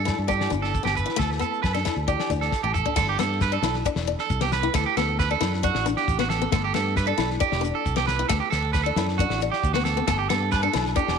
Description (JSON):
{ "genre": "highlife guitar band", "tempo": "135 BPM", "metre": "4/4", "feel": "straight", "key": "G major", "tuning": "A4 = 439 Hz", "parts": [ { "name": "picked steel-string acoustic guitar", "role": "accompaniment", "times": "0.0-11.2 s", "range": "A3 to E4", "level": "-28 LUFS", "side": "left 12 dB", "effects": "none" }, { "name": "electric guitar at the edge of break-up", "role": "arpeggios", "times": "0.0-11.2 s", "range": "F#4 to B4", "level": "-25 LUFS", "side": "right 12 dB", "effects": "spring reverb" }, { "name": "fingered electric bass", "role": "bass", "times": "0.0-11.2 s", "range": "E1 to G2", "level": "-27 LUFS", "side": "equal", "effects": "none" }, { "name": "damped 70s drum kit", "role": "drums", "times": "0.1-11.2 s", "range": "crash cymbal, kick drum, snare drum, toms", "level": "-30 LUFS", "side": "left 3 dB", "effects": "none" }, { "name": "agogo bells", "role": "percussion", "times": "0.1-2.8, 10.1-11.2 s", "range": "none", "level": "-35 LUFS", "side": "left 12 dB", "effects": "none" }, { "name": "shekere", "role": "percussion", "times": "0.1-11.1 s", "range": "none", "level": "-32 LUFS", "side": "left 2 dB", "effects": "none" } ], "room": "light reverb, small room ambience", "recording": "1960s-style stereo with parts hard left and right", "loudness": "-21 LUFS", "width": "side -6 dB against mid", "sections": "0.0-3.0 A section; 3.0-11.2 B section", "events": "drum fill 2.5-3.0", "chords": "0.0 Gadd9; 1.2 D5; 3.0 Gadd9; 4.7 D; 6.5 Gadd9; 8.3 D; 10.1 Gadd9" }